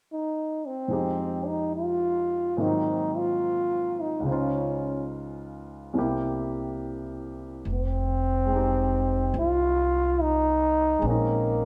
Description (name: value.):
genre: jazz ballad.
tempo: 71 BPM.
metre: 4/4.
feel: swing 67% on 8ths.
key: F minor.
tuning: A4 = 440 Hz.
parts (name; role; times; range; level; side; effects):
growling trombone; melody; 0.1-11.7 s; Bb3 to F4; -28 LUFS; equal; none.
warm grand piano; accompaniment; 0.9-11.7 s; C2 to C5; -32 LUFS; equal; none.
upright bass; bass; 7.7-11.7 s; F1 to C2; -30 LUFS; equal; none.
room: wet stone room reverb, RT60 1.2 s.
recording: band playing live in one room.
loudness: -26 LUFS.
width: mono.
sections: 0.9-7.7 A section; 7.7-11.7 B section.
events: none.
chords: 0.0 N.C.; 0.9 Fm9; 2.6 Ab7; 4.3 Dbmaj7; 6.0 C7; 7.7 Fm9; 11.0 Bbm11.